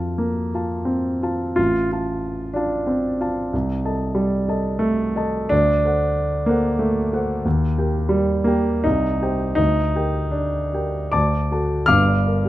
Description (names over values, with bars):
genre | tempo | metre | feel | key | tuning
classical, romantic character piece for solo piano | 72-95 BPM | 3/4 | rubato | G minor from 3.5 s | A4 = 440 Hz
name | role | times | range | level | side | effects
warm grand piano | solo | 0.0-12.5 s | G1 to F6 | -18 LUFS | equal | none
room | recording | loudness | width
light reverb | close, detailed microphones | -18 LUFS | side -15 dB against mid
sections
0.0-11.9 A section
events
none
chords
0.0 F; 1.6 F/A; 3.5 Am7b5/C; 5.5 D7; 7.4 Eb; 8.8 Cm; 9.6 Gm/D; 11.1 D; 11.9 Gm